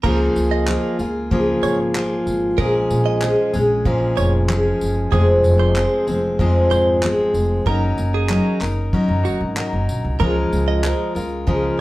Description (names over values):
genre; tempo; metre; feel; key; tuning
acoustic pop; 94 BPM; 4/4; straight; Db major; A4 = 440 Hz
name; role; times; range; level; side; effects
picked steel-string acoustic guitar; accompaniment; 0.0-11.8 s; F2 to Bb4; -18 LUFS; left 1 dB; none
direct-recorded clean electric guitar; arpeggios; 0.0-11.1 s; Gb4 to Eb5; -25 LUFS; right 6 dB; none
upright bass; bass; 0.0-11.7 s; F1 to Gb2; -22 LUFS; equal; none
cloth-damped thuddy drum kit; drums; 0.0-11.6 s; crash cymbal, handclaps, kick drum, tambourine; -25 LUFS; equal; none
room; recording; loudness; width
wet studio reverb, RT60 0.6 s; heard from further back in the room; -16 LUFS; side -17 dB against mid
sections
0.0-11.8 A section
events
none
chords
0.0 Db6; 2.6 Bbm7; 5.1 Fm; 7.7 Gb6; 10.2 Db6